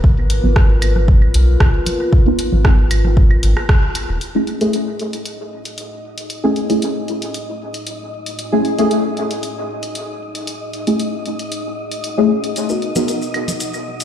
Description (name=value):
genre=dub techno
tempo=115 BPM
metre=4/4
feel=straight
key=F# dorian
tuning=A4 = 440 Hz
part: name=dark analog pad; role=sustained chords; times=0.0-14.0 s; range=A3 to F#5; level=-28 LUFS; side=left 1 dB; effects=wide subtle chorus, sidechain pumping
part: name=soft dub sub bass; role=bass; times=0.0-4.2 s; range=D#1 to B1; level=-15 LUFS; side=equal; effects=sidechain pumping
part: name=electronic kick drum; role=drums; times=0.0-3.8 s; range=none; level=-12 LUFS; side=equal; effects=none
part: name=deep mellow chord stab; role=stabs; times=0.2-13.1 s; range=A3 to A#4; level=-19 LUFS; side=left 1 dB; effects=chorus, phaser, sidechain pumping, dub echo
part: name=deep house drum kit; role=drums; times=0.3-14.0 s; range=hi-hat, rim click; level=-26 LUFS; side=equal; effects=dub echo
part: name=congas and claves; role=percussion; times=0.4-3.7, 13.0-13.6 s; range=none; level=-28 LUFS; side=right 2 dB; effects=sidechain pumping on perc, dub echo
part: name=wind-like tuned noise texture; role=texture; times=4.9-14.0 s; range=D#4 to D#5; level=-28 LUFS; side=equal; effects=built-in reverb, sidechain pumping
part: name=maracas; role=percussion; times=12.6-14.0 s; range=none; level=-28 LUFS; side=left 2 dB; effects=none
room=light reverb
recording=played on a big sound system in a bare room, stone room reverb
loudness=-14 LUFS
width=side -10 dB against mid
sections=0.0-4.2 A section; 4.2-14.0 B section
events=filter sweep on synth stab 0.0-4.2; band accent 3.7; filter sweep on analog synth pad 4.2-14.0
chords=0.0 G#m9; 4.2 F#m9; 12.6 G#m9